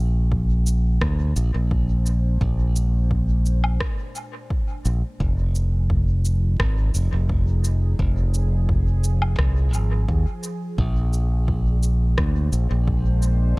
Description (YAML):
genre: ambient dub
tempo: 86 BPM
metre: 4/4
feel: straight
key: Bb mixolydian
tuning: A4 = 443 Hz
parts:
  - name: warbly tape-like pad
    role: sustained chords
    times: 0.0-13.6 s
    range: Bb2 to G5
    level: -35 LUFS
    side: right 1 dB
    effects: chorus, built-in reverb
  - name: modern bright fingered electric bass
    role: bass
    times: 0.0-13.5 s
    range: F1 to Eb2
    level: -19 LUFS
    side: equal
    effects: tube saturation
  - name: electronic kick drum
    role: drums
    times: 0.3-13.0 s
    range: none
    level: -24 LUFS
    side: equal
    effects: none
  - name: electronic shaker, rim click and woodblock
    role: drums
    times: 0.7-13.4 s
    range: none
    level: -31 LUFS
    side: equal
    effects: dub echo
room: little or no reverb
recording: echo-heavy mix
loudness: -19 LUFS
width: side -25 dB against mid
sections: 0.0-13.6 A section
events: fade-in on ambient pad 0.0-13.6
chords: 0.0 Bb13; 5.2 Fm9; 10.8 Bb13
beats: 0.32 1.01 1.71 | 2.41 3.11 3.81 4.50 | 5.20 5.90 6.60 7.29 | 7.99 8.69 9.39 10.09 | 10.78 11.48 12.18 12.88 | 13.57